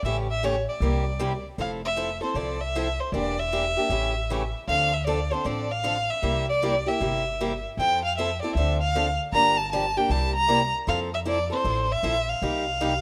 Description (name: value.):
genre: acoustic string swing (jazz manouche).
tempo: 155 BPM.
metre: 4/4.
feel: swing 64% on 8ths.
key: F major.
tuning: A4 = 440 Hz.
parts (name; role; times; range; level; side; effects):
warm violin; melody; 0.0-13.0 s; C5 to Bb5; -28 LUFS; equal; none.
picked steel-string acoustic guitar; accompaniment; 0.0-12.9 s; C3 to A4; -32 LUFS; equal; none.
upright bass; bass; 0.0-13.0 s; E1 to F2; -32 LUFS; equal; none.
room: light reverb, small room ambience.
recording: rough home demo mix.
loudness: -25 LUFS.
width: mono.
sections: 0.0-1.6 A section; 1.6-13.0 B section.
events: none.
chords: 0.0 A7; 0.8 C9; 1.6 Fmaj7; 3.1 Em7b5; 3.9 A7; 4.7 Dm7; 6.2 C7; 7.8 Fmaj7; 8.6 Dm7; 9.3 Gm7; 10.1 C7; 10.9 Fmaj7; 12.4 Cm7.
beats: | 0.04 0.42 0.81 1.20 | 1.59 1.97 2.36 2.75 | 3.13 3.52 3.91 4.30 | 4.68 5.07 5.46 5.85 | 6.23 6.62 7.01 7.39 | 7.78 8.17 8.55 8.94 | 9.33 9.71 10.10 10.49 | 10.88 11.26 11.65 12.03 | 12.42 12.80.